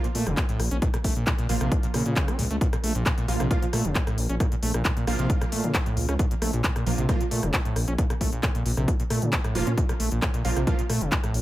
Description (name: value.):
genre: driving peak-time techno.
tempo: 134 BPM.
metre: 4/4.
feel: straight.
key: Bb harmonic minor.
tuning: A4 = 440 Hz.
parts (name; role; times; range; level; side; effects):
overdriven acid bass; riff; 0.0-11.4 s; A2 to Db4; -29 LUFS; equal; lush chorus, sidechain pumping, dub echo.
rave stab; stabs; 0.0-10.8 s; F3 to F4; -33 LUFS; right 4 dB; chorus, built-in reverb, sidechain pumping, dub echo.
techno drum kit; drums; 0.0-11.4 s; handclaps, hi-hat, rim click; -30 LUFS; left 1 dB; sidechain pumping on hats, sidechain pumping on cymbals.
dark detuned saw bass; bass; 0.1-11.4 s; F1 to Bb2; -27 LUFS; equal; sidechain pumping.
electronic kick drum; drums; 0.4-11.2 s; none; -26 LUFS; equal; none.
room: little or no reverb.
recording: none.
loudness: -22 LUFS.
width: side -15 dB against mid.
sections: 0.0-11.4 A section.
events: none.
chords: 0.0 Bb5.